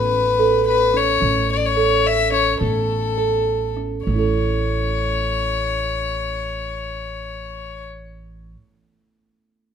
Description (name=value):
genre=contemporary instrumental, contemporary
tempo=195-219 BPM (eighths)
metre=5/8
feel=straight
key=A major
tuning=A4 = 441 Hz
part: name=rich violin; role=melody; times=0.0-7.8 s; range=A4 to E5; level=-20 LUFS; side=left 6 dB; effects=none
part: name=kalimba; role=arpeggios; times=0.0-8.6 s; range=A3 to A4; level=-22 LUFS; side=right 6 dB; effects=none
part: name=upright bass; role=bass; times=0.0-8.5 s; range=A1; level=-25 LUFS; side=right 2 dB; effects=none
room=light reverb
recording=close, detailed microphones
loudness=-17 LUFS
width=side -8 dB against mid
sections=0.0-4.1 A section; 4.1-7.1 B section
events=slowing down 1.2-4.1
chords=0.0 Aadd9; 1.2 A; 2.6 Aadd9; 4.1 A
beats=0.11 0.39 0.66 0.94 | 1.21 1.49 1.76 2.04 2.32 | 2.60 2.89 3.18 3.47 3.77 | 4.07 4.37 4.67 4.97 5.27 | 5.57 5.87 6.17 6.47 6.78